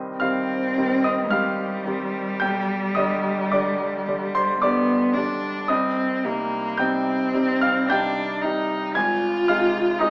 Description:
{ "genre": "classical, romantic duo for cello and grand piano", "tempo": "55 BPM", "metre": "3/4", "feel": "rubato", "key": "C minor", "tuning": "A4 = 440 Hz", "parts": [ { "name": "bright grand piano", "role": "accompaniment", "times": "0.0-10.1 s", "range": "Ab1 to Ab6", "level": "-22 LUFS", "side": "equal", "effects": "none" }, { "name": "warm cello", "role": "melody", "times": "0.2-10.1 s", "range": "G3 to F4", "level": "-23 LUFS", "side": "equal", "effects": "none" } ], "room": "wet recital hall reverb, RT60 1.4 s", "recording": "small speaker sound", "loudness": "-20 LUFS", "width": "side -34 dB against mid", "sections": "0.0-10.1 A section", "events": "none", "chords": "0.0 Cm; 2.4 G/B; 5.7 Cm; 9.0 Ab" }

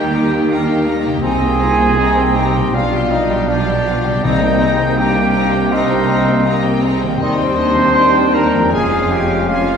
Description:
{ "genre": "classical, slow romantic movement for symphony orchestra", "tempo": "80 BPM", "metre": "4/4", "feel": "rubato", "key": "unclear", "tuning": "A4 = 440 Hz", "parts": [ { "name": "warm symphonic violin section", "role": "melody", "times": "0.0-9.8 s", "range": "Eb5 to Bb5", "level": "-27 LUFS", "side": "left 4 dB", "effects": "none" }, { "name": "clear oboe", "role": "second line", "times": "0.0-9.8 s", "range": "Eb5 to G5", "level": "-26 LUFS", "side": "left 1 dB", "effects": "none" }, { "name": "hollow concert flute", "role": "second line", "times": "0.0-9.8 s", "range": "D5 to C6", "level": "-23 LUFS", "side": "left 1 dB", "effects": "none" }, { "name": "rich studio violin section", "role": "second line", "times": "0.0-9.8 s", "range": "C4 to G4", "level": "-27 LUFS", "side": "left 2 dB", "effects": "none" }, { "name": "warm clarinet", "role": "second line", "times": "0.0-9.8 s", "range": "Bb3 to F4", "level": "-25 LUFS", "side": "left 3 dB", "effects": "none" }, { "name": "mellow bassoon", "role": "accompaniment", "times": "0.0-9.8 s", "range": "G3 to D4", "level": "-24 LUFS", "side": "right 1 dB", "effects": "none" }, { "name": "rich studio viola section", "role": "accompaniment", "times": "0.0-9.8 s", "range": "Eb3 to C4", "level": "-24 LUFS", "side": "right 3 dB", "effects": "none" }, { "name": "dark French horn section", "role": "sustained chords", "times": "0.0-9.8 s", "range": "G3 to G4", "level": "-24 LUFS", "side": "left 3 dB", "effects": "none" }, { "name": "concert harp", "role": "arpeggios", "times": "0.0-9.8 s", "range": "F2 to Db5", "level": "-26 LUFS", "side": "left 6 dB", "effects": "none" }, { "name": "dark trumpet", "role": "stabs", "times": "0.0-9.8 s", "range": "D4 to C5", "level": "-18 LUFS", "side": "right 1 dB", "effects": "none" }, { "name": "rich studio cello section", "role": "bass", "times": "0.0-9.8 s", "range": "Eb2 to Eb3", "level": "-21 LUFS", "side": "right 1 dB", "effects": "none" }, { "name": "rich studio double bass section", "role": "bass", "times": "0.0-9.8 s", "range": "F1 to Eb2", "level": "-21 LUFS", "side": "right 3 dB", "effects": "none" }, { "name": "timpani", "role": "percussion", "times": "4.2-5.3 s", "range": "C3", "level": "-24 LUFS", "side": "left 2 dB", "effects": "none" } ], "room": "wet scoring stage reverb, RT60 1.7 s", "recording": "heard from further back in the room", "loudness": "-12 LUFS", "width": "side -7 dB against mid", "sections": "0.0-9.8 A section", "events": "none", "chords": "0.0 Eb; 1.2 Cm7; 2.7 G7/B; 4.2 Cm7; 7.2 Cm/Eb; 8.7 Db/F" }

